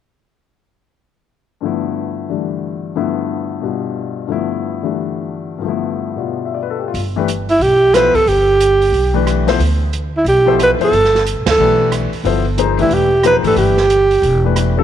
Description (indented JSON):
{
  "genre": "modal jazz",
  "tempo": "181 BPM",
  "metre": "4/4",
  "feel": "swing 62% on 8ths",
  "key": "G mixolydian",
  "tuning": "A4 = 441 Hz",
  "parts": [
    { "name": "warm grand piano", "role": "accompaniment", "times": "1.6-14.8 s", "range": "G2 to E5", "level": "-18 LUFS", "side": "left 10 dB", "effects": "none" },
    { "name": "upright bass", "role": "bass", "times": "6.9-14.8 s", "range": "E1 to D2", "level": "-18 LUFS", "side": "right 1 dB", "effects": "none" },
    { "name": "open jazz drum kit", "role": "drums", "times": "6.9-14.7 s", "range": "hi-hat, kick drum, ride cymbal, rim click, snare drum", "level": "-24 LUFS", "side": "right 7 dB", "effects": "none" },
    { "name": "breathy alto saxophone", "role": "melody", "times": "7.5-14.5 s", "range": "E4 to B4", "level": "-12 LUFS", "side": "right 2 dB", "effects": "none" }
  ],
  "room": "moderate echo chamber reverb, RT60 2.1 s",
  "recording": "1960s-style stereo with parts hard left and right",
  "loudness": "-13 LUFS",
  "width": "side -10 dB against mid",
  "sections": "1.6-6.9 A section; 6.9-14.8 B section",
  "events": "band accent 11.4",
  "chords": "1.6 G13; 12.2 C"
}